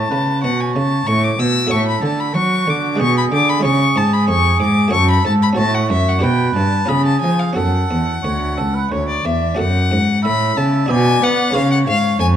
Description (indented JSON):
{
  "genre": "classical, baroque-style sonata movement with continuo",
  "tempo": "93 BPM",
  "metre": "3/4",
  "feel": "straight",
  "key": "F# minor",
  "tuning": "A4 = 439 Hz",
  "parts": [
    { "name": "rich violin", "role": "melody", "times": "0.0-12.3 s", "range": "C#5 to E6", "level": "-19 LUFS", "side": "left 5 dB", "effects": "none" },
    { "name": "mellow oboe", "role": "second line", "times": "0.0-12.4 s", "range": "F#4 to E5", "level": "-23 LUFS", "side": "right 6 dB", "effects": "none" },
    { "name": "buff-stop harpsichord", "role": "accompaniment", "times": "0.0-12.4 s", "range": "C#2 to D5", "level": "-23 LUFS", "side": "right 1 dB", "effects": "none" },
    { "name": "rich cello", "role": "bass", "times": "0.0-12.4 s", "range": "C#2 to B3", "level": "-17 LUFS", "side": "equal", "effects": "none" }
  ],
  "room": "moderate recital hall reverb, RT60 1.4 s",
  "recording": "none",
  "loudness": "-14 LUFS",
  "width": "side -9 dB against mid",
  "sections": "0.0-9.6 A section; 9.6-12.4 B section",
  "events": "none",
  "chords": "0.0 A; 1.7 F#m/A; 3.0 G#dim/B; 3.6 C#; 4.9 F#m; 5.6 F#m/A; 6.2 G/B; 6.9 C#; 7.6 F#m; 10.9 Bm; 11.6 C#7"
}